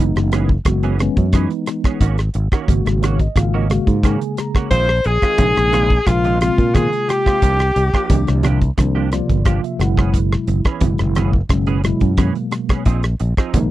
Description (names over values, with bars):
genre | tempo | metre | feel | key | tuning
electric jazz fusion | 88 BPM | 4/4 | straight | unclear | A4 = 441 Hz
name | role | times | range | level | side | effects
mellow tine electric piano | accompaniment | 0.0-13.7 s | Cb3 to Bb5 | -21 LUFS | equal | medium stereo tremolo
semi-hollow electric guitar | stabs | 0.0-13.6 s | Eb3 to Ab4 | -26 LUFS | right 8 dB | ensemble chorus
fretless electric bass | bass | 0.0-13.7 s | Gb1 to Bb2 | -18 LUFS | equal | none
damped 70s drum kit | drums | 0.2-13.7 s | hi-hat, kick drum, rim click | -17 LUFS | equal | none
bright alto saxophone | melody | 4.7-8.4 s | F4 to C5 | -18 LUFS | equal | slapback echo
breathy tenor saxophone | second line | 4.7-8.5 s | F4 to C5 | -24 LUFS | left 7 dB | none
congas | percussion | 4.7-13.7 s | none | -25 LUFS | right 2 dB | none
room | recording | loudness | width
little or no reverb | dry, close 1970s-style studio recording | -14 LUFS | side -15 dB against mid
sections
0.0-13.7 A section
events
tine electric piano fill 2.7-4.7, 8.8-10.1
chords
0.0 Gb9sus4; 2.0 Ab9sus4; 4.7 Bb9sus4; 7.4 C9sus4; 9.8 Gb9sus4; 12.9 Bb9sus4